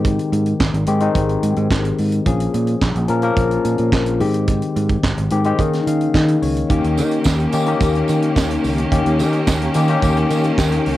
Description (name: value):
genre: disco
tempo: 108 BPM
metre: 4/4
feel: straight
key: unclear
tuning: A4 = 438 Hz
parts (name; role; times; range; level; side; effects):
- barky tine electric piano; accompaniment; 0.0-11.0 s; Eb3 to F5; -19 LUFS; left 4 dB; phaser, cassette tape
- fingered electric bass; bass; 0.0-11.0 s; Ab1 to Eb3; -20 LUFS; right 2 dB; none
- tight funk drum kit; drums; 0.0-11.0 s; handclaps, hi-hat, kick drum, snare drum; -21 LUFS; right 2 dB; cassette tape
- bright studio string section; sustained chords; 6.7-11.0 s; Eb3 to G4; -23 LUFS; right 1 dB; cassette tape
- tambourine; percussion; 7.0-10.7 s; none; -34 LUFS; right 10 dB; none
room: light reverb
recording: home recording on cassette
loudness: -15 LUFS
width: side -14 dB against mid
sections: 0.0-6.7 A section; 6.7-11.0 B section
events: tine electric piano fill 5.6-6.7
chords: 0.0 Abmaj7; 2.3 Bbm7; 4.2 Abmaj7; 5.6 Eb7sus4; 6.7 Eb7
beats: | 0.05 0.60 1.15 1.71 | 2.26 2.82 3.37 3.92 | 4.48 5.03 5.59 6.14 | 6.70 7.25 7.81 8.36 | 8.92 9.47 10.03 10.58